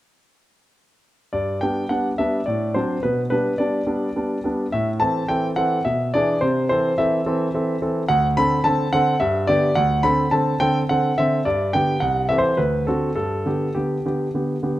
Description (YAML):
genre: classical-period piano sonatina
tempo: 106 BPM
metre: 3/4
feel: straight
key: G major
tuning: A4 = 439 Hz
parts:
  - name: clear concert grand piano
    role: solo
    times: 1.3-14.8 s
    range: C2 to B5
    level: -18 LUFS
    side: equal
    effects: none
room: moderate recital hall reverb, RT60 1.3 s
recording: close, detailed microphones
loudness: -18 LUFS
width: side -15 dB against mid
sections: 1.3-14.8 A section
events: none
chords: 1.3 G; 2.5 D7/A; 3.0 G/B; 4.7 Am; 5.9 E7/B; 6.4 Am/C; 8.1 D5; 9.2 G; 9.8 D5; 11.5 G; 12.0 Am/C; 12.6 D7; 13.2 G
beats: | 1.34 1.91 2.48 | 3.04 3.61 4.17 | 4.73 5.30 5.86 | 6.42 6.99 7.54 | 8.10 8.66 9.22 | 9.78 10.34 10.90 | 11.46 12.03 12.59 | 13.17 13.76 14.34